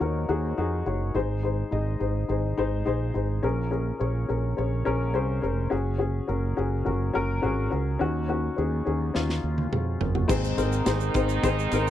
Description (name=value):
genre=piano-driven pop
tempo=105 BPM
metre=4/4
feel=straight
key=Ab mixolydian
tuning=A4 = 437 Hz
part: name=dark upright piano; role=accompaniment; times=0.0-11.9 s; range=Ab2 to Eb5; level=-27 LUFS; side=left 4 dB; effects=none
part: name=fretless electric bass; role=bass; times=0.0-11.9 s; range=F1 to F2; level=-27 LUFS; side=right 2 dB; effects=wide subtle chorus
part: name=modern studio drum kit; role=drums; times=9.1-11.8 s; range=crash cymbal, hi-hat, kick drum, snare drum, toms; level=-29 LUFS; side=right 2 dB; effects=none
part: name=muted French horn section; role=second line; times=10.3-11.9 s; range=Eb3 to Eb4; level=-31 LUFS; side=right 6 dB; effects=none
part: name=tube shaker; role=percussion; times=10.3-11.9 s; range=none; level=-43 LUFS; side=right 27 dB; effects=none
room=little or no reverb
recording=dry, close 1970s-style studio recording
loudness=-24 LUFS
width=side -11 dB against mid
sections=0.0-10.3 A section; 10.3-11.9 B section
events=drum fill 9.1-10.3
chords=0.0 Ebm7; 1.1 Ab; 3.4 Bbm7; 5.7 Gbsus2; 8.0 Ebm7; 10.3 Ab